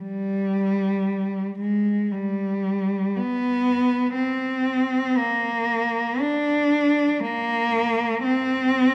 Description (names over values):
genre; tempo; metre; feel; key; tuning
classical, free, expressive piece for unaccompanied cello; free time; none; none; unclear; A4 = 440 Hz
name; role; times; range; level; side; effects
rich cello; solo; 0.0-8.9 s; G3 to D4; -23 LUFS; equal; none
room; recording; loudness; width
moderate scoring stage reverb, RT60 1.7 s; none; -23 LUFS; mono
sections
0.0-8.9 A section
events
none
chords
none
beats
free time